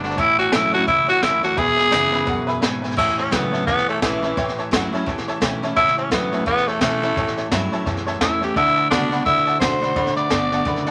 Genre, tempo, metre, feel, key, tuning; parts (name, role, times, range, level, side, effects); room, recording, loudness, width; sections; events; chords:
rockabilly; 172 BPM; 4/4; swing 59% on 8ths; A mixolydian; A4 = 441 Hz
growling tenor saxophone; melody; 0.0-10.9 s; E3 to D5; -21 LUFS; equal
picked steel-string acoustic guitar; accompaniment; 0.0-10.9 s; E2 to F#4; -31 LUFS; equal
tack piano; accompaniment; 0.0-10.9 s; B4 to B5; -31 LUFS; equal
electric guitar at the edge of break-up; riff; 0.0-10.9 s; E2 to B3; -29 LUFS; equal
upright bass; bass; 0.0-10.9 s; F#1 to B2; -36 LUFS; equal
jazz brush drum kit; drums; 0.0-10.9 s; crash cymbal, hi-hat, kick drum, snare drum; -27 LUFS; equal
light reverb; -19 LUFS; mono
0.0-3.0 A section; 3.0-10.9 B section
tenor saxophone solo 3.0-10.9
0.2 A; 1.6 E; 3.0 A; 8.6 D